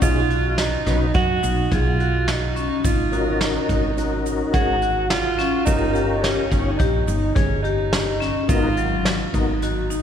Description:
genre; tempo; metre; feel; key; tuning
progressive instrumental, band music in an uneven meter; 106 BPM; 5/4; straight; unclear; A4 = 438 Hz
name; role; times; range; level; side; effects
warm alto saxophone; second line; 0.0-10.0 s; Db4 to F#4; -24 LUFS; right 4 dB; none
tonewheel organ; accompaniment; 0.0-9.5 s; Cb4 to Db5; -28 LUFS; left 3 dB; chorus vibrato, slow rotary speaker
vibraphone with hard mallets; arpeggios; 0.0-10.0 s; Gb3 to G#4; -25 LUFS; left 4 dB; none
woody fretless electric bass; bass; 0.0-10.0 s; G1 to F#2; -24 LUFS; equal; none
vintage brush drum kit; drums; 0.0-10.0 s; hi-hat, kick drum, snare drum; -24 LUFS; equal; none
tube shaker; percussion; 0.0-10.0 s; none; -40 LUFS; right 6 dB; none
room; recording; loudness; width
wet cathedral reverb, RT60 4.5 s; recorded in a church or concert hall; -18 LUFS; side -8 dB against mid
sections
0.0-10.0 A section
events
none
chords
0.0 B6; 2.8 Ab7sus4; 5.7 Eb7/G; 8.5 Abm9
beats
| 0.02 0.59 1.15 1.72 2.28 | 2.84 3.41 3.97 4.54 5.10 | 5.67 6.23 6.80 7.36 7.93 | 8.49 9.06 9.62

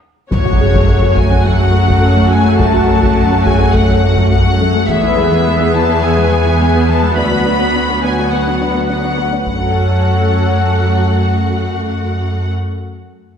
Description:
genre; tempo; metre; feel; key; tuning
cinematic, hybrid orchestral and electronic film score; 105 BPM; 4/4; straight; F# minor; A4 = 440 Hz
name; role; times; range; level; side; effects
warm symphonic violin section; melody; 0.3-12.5 s; C#5 to B5; -19 LUFS; left 4 dB; none
rich symphonic viola section; accompaniment; 0.3-12.5 s; A3 to G#4; -18 LUFS; right 1 dB; none
chorused pulse-width pad; sustained chords; 0.3-12.5 s; E3 to F#5; -18 LUFS; left 1 dB; none
soft round pluck; arpeggios; 0.3-9.4 s; E3 to B4; -23 LUFS; left 3 dB; none
rich symphonic cello section; bass; 0.3-12.5 s; D2 to F#2; -15 LUFS; right 1 dB; none
taiko ensemble; drums; 0.3-6.0, 9.5-10.6 s; none; -18 LUFS; equal; none
impact; sound effects; 0.3-2.6 s; none; -19 LUFS; equal; none
dark baby grand piano; texture; 0.6-9.5 s; A3 to D5; -24 LUFS; left 2 dB; none
room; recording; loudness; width
wet scoring stage reverb, RT60 1.5 s; heard from further back in the room; -11 LUFS; side -8 dB against mid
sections
0.3-9.5 A section; 9.5-11.7 B section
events
break 0.0-0.3; drum fill 0.0-0.3; impact 0.3-2.6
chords
0.3 F#m; 4.9 E; 7.2 Bm/D; 9.5 F#m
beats
| 0.32 0.89 1.46 2.03 | 2.60 3.17 3.75 4.32 | 4.89 5.46 6.03 6.60 | 7.17 7.75 8.32 8.89 | 9.46 10.03 10.60 11.18

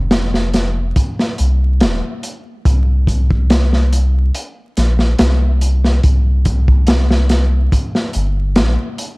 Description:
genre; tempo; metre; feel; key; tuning
trip hop; 71 BPM; 4/4; straight; C minor; A4 = 436 Hz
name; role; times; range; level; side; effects
soft dub sub bass; bass; 0.0-8.8 s; Eb1 to C2; -14 LUFS; equal; tube saturation
crunchy breakbeat drum kit; drums; 0.1-9.2 s; hi-hat, kick drum, snare drum; -16 LUFS; equal; none
room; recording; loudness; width
little or no reverb; dark, warm production, vinyl crackle; -12 LUFS; side -26 dB against mid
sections
0.0-9.2 A section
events
none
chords
none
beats
0.12 0.97 1.81 | 2.66 3.50 4.35 5.19 | 6.04 6.88 7.73 8.57

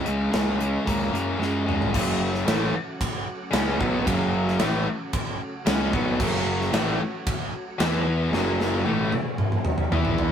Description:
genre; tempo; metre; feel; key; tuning
classic rock; 112 BPM; 4/4; straight; F# minor; A4 = 438 Hz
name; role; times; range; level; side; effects
string machine, cellos; sustained chords; 0.0-10.3 s; C#4 to F#5; -37 LUFS; equal; none
overdriven semi-hollow guitar; riff; 0.0-10.3 s; F#2 to E4; -30 LUFS; right 4 dB; none
tight distorted guitar; riff; 0.0-10.3 s; F#2 to E4; -27 LUFS; left 4 dB; distortion
fuzz picked electric bass; bass; 0.1-10.3 s; F#1 to F#2; -28 LUFS; equal; overdrive
gated 80s drum kit; drums; 0.1-10.3 s; crash cymbal, hi-hat, kick drum, ride cymbal, snare drum, toms; -26 LUFS; equal; none
room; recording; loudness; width
light reverb; rough rehearsal-room recording; -22 LUFS; side -8 dB against mid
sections
0.0-1.9 A section; 1.9-10.3 B section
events
drum fill 1.4-1.9, 8.3-10.3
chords
0.0 C#m; 1.9 F#m; 7.8 E5; 8.3 F#m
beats
0.32 0.85 1.39 | 1.93 2.46 3.00 3.53 | 4.07 4.60 5.13 5.67 | 6.20 6.73 7.26 7.80 | 8.33 8.86 9.39 9.92

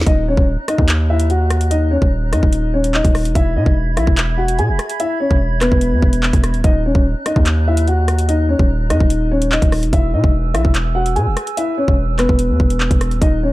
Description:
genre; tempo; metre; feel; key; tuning
hip hop, drill; 146 BPM; 4/4; half-time; Eb phrygian; A4 = 439 Hz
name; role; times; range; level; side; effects
dark concert grand piano; melody; 0.0-13.5 s; B3 to G#5; -19 LUFS; left 2 dB; digital delay
distorted 808-style bass; bass; 0.0-13.5 s; Eb1 to B2; -17 LUFS; equal; distortion
drill drum kit; drums; 0.0-13.3 s; handclaps, hi-hat, kick drum, rim click, snare drum; -16 LUFS; equal; none
mellow hollow flute section; sustained chords; 0.1-13.5 s; B4 to G#6; -29 LUFS; right 4 dB; none
room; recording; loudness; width
studio ambience; dark, warm production; -13 LUFS; side -18 dB against mid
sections
0.1-13.2 A section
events
none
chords
0.1 Ebm; 3.4 E; 6.6 Ebm; 9.9 E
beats
| 0.07 0.48 0.89 1.30 | 1.71 2.12 2.53 2.94 | 3.35 3.76 4.17 4.59 | 5.00 5.41 5.82 6.23 | 6.64 7.05 7.46 7.87 | 8.29 8.70 9.11 9.52 | 9.93 10.34 10.75 11.16 | 11.57 11.98 12.39 12.80 | 13.22

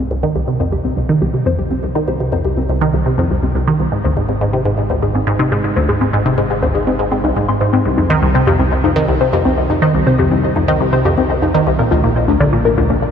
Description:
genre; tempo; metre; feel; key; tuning
ambient, sequencer-driven space music; 122 BPM; 4/4; straight; C minor; A4 = 440 Hz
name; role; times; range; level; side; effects
warbly dusty pluck; arpeggios; 0.0-12.9 s; Bb3 to C6; -19 LUFS; left 4 dB; chorus, auto-pan, ping-pong delay, shimmer reverb
resonant blip pluck; riff; 0.0-13.1 s; C2 to Eb3; -14 LUFS; right 1 dB; phaser, ping-pong delay
fat analog bass; bass; 0.0-13.1 s; Ab1 to C2; -25 LUFS; equal; none
room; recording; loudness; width
wet huge ambient reverb, RT60 7.2 s; dreamy mix soaked in reverb; -13 LUFS; side -8 dB against mid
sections
0.0-13.1 A section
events
none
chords
0.0 Cm; 3.9 Ab; 7.9 Cm; 11.8 Bb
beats
0.48 0.97 1.46 | 1.95 2.44 2.94 3.43 | 3.92 4.41 4.90 5.39 | 5.89 6.38 6.87 7.36 | 7.85 8.35 8.84 9.33 | 9.82 10.31 10.80 11.30 | 11.79 12.28 12.77

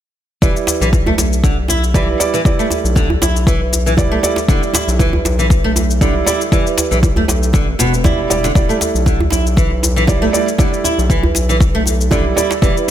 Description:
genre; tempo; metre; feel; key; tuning
afro house; 118 BPM; 4/4; swing 55% on 16ths; E minor; A4 = 440 Hz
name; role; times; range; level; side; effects
flamenco guitar; arpeggios; 0.4-12.7 s; B2 to E4; -19 LUFS; equal; wide subtle chorus, sidechain pumping, ping-pong delay
felt-muted upright piano; stabs; 0.4-12.9 s; G3 to D5; -20 LUFS; right 5 dB; sidechain pumping, ping-pong delay
round analog bass; bass; 0.4-12.7 s; E1 to B1; -18 LUFS; equal; sidechain pumping
electronic kick drum; drums; 0.4-12.7 s; none; -14 LUFS; equal; none
shaker; drums; 0.4-12.9 s; none; -22 LUFS; left 6 dB; none
djembe; percussion; 0.4-12.9 s; none; -22 LUFS; right 2 dB; none
room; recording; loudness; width
light reverb; bright 1980s-style digital production; -12 LUFS; side -11 dB against mid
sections
0.4-12.9 A section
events
none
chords
0.4 Em7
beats
| 0.42 0.93 1.44 1.95 | 2.45 2.96 3.47 3.98 | 4.49 5.00 5.50 6.01 | 6.52 7.03 7.54 8.05 | 8.56 9.06 9.57 10.08 | 10.59 11.10 11.61 12.12 | 12.62

